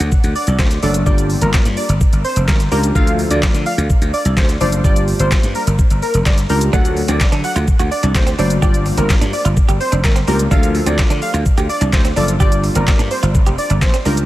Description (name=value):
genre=dance-pop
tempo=127 BPM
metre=4/4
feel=straight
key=G minor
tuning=A4 = 438 Hz
part: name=slap bass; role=bass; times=0.0-14.2 s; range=F1 to D3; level=-17 LUFS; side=equal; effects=sidechain pumping
part: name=smooth R&B drum kit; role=drums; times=0.0-14.3 s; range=handclaps, hi-hat, kick drum, shaker, snare drum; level=-16 LUFS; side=equal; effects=none
part: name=wide unison lead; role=melody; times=0.4-14.1 s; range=Bb4 to F#5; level=-22 LUFS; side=equal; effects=sidechain pumping, analog delay
part: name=glassy digital keys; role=accompaniment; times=0.8-14.2 s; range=F3 to C5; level=-23 LUFS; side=left 1 dB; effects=chorus, sidechain pumping
part: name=direct-recorded clean electric guitar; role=riff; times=6.7-14.1 s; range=C4 to G4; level=-26 LUFS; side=right 7 dB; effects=lush chorus
room=light reverb, digital ambience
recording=none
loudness=-12 LUFS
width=side -16 dB against mid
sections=0.0-14.3 A section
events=none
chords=0.0 D; 1.1 Gm7; 3.0 Dm; 4.8 Gm7; 6.7 D; 8.6 Gm7; 10.5 Dm; 12.4 Gm7